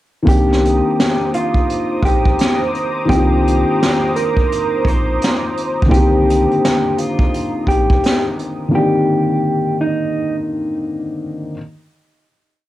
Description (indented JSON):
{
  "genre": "lo-fi hip hop",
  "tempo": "85 BPM",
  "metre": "4/4",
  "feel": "swing 66% on 16ths",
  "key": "C minor",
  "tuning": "A4 = 440 Hz",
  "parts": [
    { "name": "felt-muted upright piano", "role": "accompaniment", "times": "0.2-11.6 s", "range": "D3 to D5", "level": "-18 LUFS", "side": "left 1 dB", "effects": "low-pass filter, cassette tape" },
    { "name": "mellow electric guitar", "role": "melody", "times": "0.3-10.4 s", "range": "Eb4 to C5", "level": "-19 LUFS", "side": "equal", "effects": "low-pass filter, analog delay" },
    { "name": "lush unison pad", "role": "sustained chords", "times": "0.3-8.7 s", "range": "C5 to Eb6", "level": "-25 LUFS", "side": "right 1 dB", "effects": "chorus, phaser, low-pass filter, cassette tape" },
    { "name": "round analog bass", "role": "bass", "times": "0.3-8.0 s", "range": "Bb1 to C2", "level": "-18 LUFS", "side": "equal", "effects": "none" },
    { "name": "vintage brush drum kit", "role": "drums", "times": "0.3-8.6 s", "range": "hi-hat, kick drum, snare drum", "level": "-17 LUFS", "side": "equal", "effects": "cassette tape" }
  ],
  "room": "moderate studio reverb, RT60 0.6 s",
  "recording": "home recording on cassette",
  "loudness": "-14 LUFS",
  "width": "side -15 dB against mid",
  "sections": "0.3-11.6 A section",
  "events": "none",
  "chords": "0.3 Cm9",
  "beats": "| 0.27 0.97 1.68 2.39 | 3.09 3.80 4.50 5.21 | 5.92 6.62 7.33 8.03 | 8.74 9.44 10.15 10.86"
}